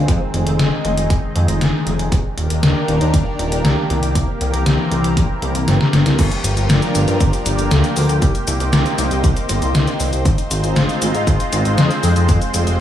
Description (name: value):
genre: synthwave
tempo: 118 BPM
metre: 4/4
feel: straight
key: F dorian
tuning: A4 = 440 Hz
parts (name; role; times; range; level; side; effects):
- lush unison pad; sustained chords; 0.0-12.8 s; Eb3 to C5; -21 LUFS; equal; chorus, phaser, sidechain pumping
- chorused synth bass; bass; 0.0-12.8 s; Eb1 to Ab2; -18 LUFS; equal; sidechain pumping
- detuned 8-bit digital drum machine; drums; 0.1-12.8 s; crash cymbal, hi-hat, shaker, snare drum; -19 LUFS; left 1 dB; overdrive, gated reverb
- electronic kick drum; drums; 0.1-12.4 s; none; -17 LUFS; equal; none
room: light reverb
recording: small room ambience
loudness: -14 LUFS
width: side -11 dB against mid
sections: 0.0-6.2 A section; 6.2-12.8 B section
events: drum fill 5.7-6.2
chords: 0.0 Fm7; 2.1 Ebmaj7; 4.2 C7; 6.2 Gm7; 8.2 Cm7; 10.3 Ab6; 12.3 Fmadd9